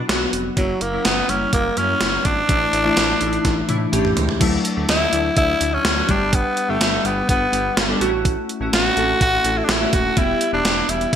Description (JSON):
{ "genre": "1980s-style pop", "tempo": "125 BPM", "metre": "4/4", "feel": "straight", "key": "unclear", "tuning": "A4 = 442 Hz", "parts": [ { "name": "growling tenor saxophone", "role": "melody", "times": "0.0-11.2 s", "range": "F#3 to F#4", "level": "-20 LUFS", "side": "equal", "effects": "none" }, { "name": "glassy digital keys", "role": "accompaniment", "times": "0.0-11.2 s", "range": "E3 to A4", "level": "-23 LUFS", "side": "left 1 dB", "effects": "chorus" }, { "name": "smooth synth bass", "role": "bass", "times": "0.0-11.2 s", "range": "D#1 to A2", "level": "-27 LUFS", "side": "equal", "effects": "none" }, { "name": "gated 80s digital drum machine", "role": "drums", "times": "0.1-11.2 s", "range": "crash cymbal, hi-hat, kick drum, snare drum, toms", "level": "-20 LUFS", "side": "equal", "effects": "gated reverb, gated reverb snare" } ], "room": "moderate plate reverb, RT60 1.3 s", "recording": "bright 1980s-style digital production", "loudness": "-16 LUFS", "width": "side -9 dB against mid", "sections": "0.0-4.4 A section; 4.4-11.2 B section", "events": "drum fill 3.5-4.4", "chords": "0.0 Bm; 0.6 F#7; 2.5 Asus4; 4.4 Dadd9; 6.1 G; 8.0 A6; 10.2 Em", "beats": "0.09 | 0.57 1.05 1.53 2.01 | 2.49 2.97 3.45 3.93 | 4.41 4.89 5.37 5.85 | 6.33 6.81 7.29 7.77 | 8.25 8.73 9.21 9.69 | 10.17 10.65 11.13" }